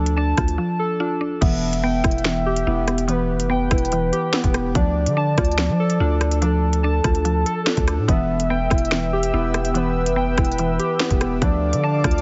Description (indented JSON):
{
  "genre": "hip hop, drill",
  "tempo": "144 BPM",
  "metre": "4/4",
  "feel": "half-time",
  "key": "E phrygian",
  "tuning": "A4 = 440 Hz",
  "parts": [
    { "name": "mallet-like synth pluck", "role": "accompaniment", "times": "0.0-12.2 s", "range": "E3 to F4", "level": "-28 LUFS", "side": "equal", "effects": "chorus, low-pass filter" },
    { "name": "warbly lo-fi synth keys", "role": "arpeggios", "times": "0.0-12.2 s", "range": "B3 to A5", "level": "-28 LUFS", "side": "equal", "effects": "chorus, low-pass filter, tape echo" },
    { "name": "long sustained 808-style bass", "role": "bass", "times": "0.0-12.2 s", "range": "E1 to F3", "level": "-25 LUFS", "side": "equal", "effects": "none" },
    { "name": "drill drum kit", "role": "drums", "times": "0.1-12.2 s", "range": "crash cymbal, finger snaps, hi-hat, kick drum, rim click, snare drum", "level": "-24 LUFS", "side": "equal", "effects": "none" },
    { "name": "gliding portamento lead", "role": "second line", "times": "1.4-12.2 s", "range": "A4 to E5", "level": "-28 LUFS", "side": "equal", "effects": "chorus, tape echo" },
    { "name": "warm analog pad", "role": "sustained chords", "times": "8.1-12.2 s", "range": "A4 to E6", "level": "-33 LUFS", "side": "equal", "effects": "chorus" }
  ],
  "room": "little or no reverb",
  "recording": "heavily compressed radio sound, multiband compression, nothing above 7.8 kHz",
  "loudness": "-20 LUFS",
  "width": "mono",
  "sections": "0.0-1.4 A section; 1.4-12.2 B section",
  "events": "break 0.6-1.4",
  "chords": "0.0 Dm; 1.4 Em; 4.8 Dm; 8.1 Em; 11.4 Dm"
}